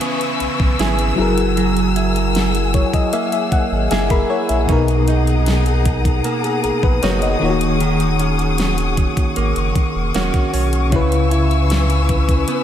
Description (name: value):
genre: contemporary R&B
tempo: 77 BPM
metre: 4/4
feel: straight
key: B major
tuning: A4 = 442 Hz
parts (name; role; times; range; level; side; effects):
- FM electric piano with tremolo; accompaniment; 0.0-12.6 s; B2 to B5; -21 LUFS; left 4 dB; none
- warm studio string section; sustained chords; 0.0-12.6 s; G#4 to E6; -23 LUFS; left 4 dB; sidechain pumping
- direct-recorded clean electric guitar; arpeggios; 0.0-12.6 s; B2 to G#4; -22 LUFS; right 7 dB; lush chorus, analog delay
- smooth R&B drum kit; drums; 0.0-12.6 s; hi-hat, kick drum, snare drum; -20 LUFS; equal; none
- downlifter; sound effects; 0.0-4.7 s; none; -32 LUFS; right 1 dB; none
- warm sub bass; bass; 0.4-12.4 s; D#1 to C#2; -19 LUFS; equal; none
room: moderate lush hall reverb, RT60 2.0 s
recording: dreamy mix soaked in reverb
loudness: -14 LUFS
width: side -10 dB against mid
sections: 0.0-12.6 A section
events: FM electric piano fill 2.4-4.7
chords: 0.0 C#m7; 1.2 F#9; 7.4 D#m7; 10.9 C#m7